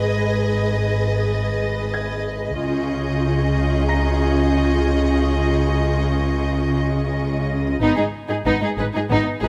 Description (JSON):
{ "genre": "cinematic, suspense film score", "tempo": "92 BPM", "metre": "4/4", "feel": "straight", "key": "unclear", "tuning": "A4 = 440 Hz", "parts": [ { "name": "rich studio violin section", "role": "melody", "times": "0.0-9.5 s", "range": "D#4 to D#5", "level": "-29 LUFS", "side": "equal", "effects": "none" }, { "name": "rich studio violin section", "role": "second line", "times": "0.0-9.5 s", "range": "B3 to B4", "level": "-31 LUFS", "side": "equal", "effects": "none" }, { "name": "rich studio viola section", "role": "accompaniment", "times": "0.0-9.5 s", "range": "D#4 to G#4", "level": "-28 LUFS", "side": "equal", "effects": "none" }, { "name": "rich studio cello section", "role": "bass", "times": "0.0-9.5 s", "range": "G#2 to C#3", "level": "-25 LUFS", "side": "equal", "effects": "none" }, { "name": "rich studio double bass section", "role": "bass", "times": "0.0-9.5 s", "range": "G#1 to C#2", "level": "-26 LUFS", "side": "equal", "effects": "none" }, { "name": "rich studio violin section", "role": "texture", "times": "0.0-7.4 s", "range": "C#6 to A#6", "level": "-38 LUFS", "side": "equal", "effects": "none" }, { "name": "warm concert grand piano", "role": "texture", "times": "0.0-7.8 s", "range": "A#5 to A#6", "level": "-36 LUFS", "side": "equal", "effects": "none" } ], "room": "light reverb", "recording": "close, detailed microphones", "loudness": "-20 LUFS", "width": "mono", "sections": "0.0-9.5 A section", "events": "none", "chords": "0.0 G#m; 2.6 C#add9; 7.8 G#m", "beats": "0.60 1.26 1.92 | 2.58 3.23 3.89 4.54 | 5.20 5.85 6.50 7.15 | 7.80 8.46 9.10" }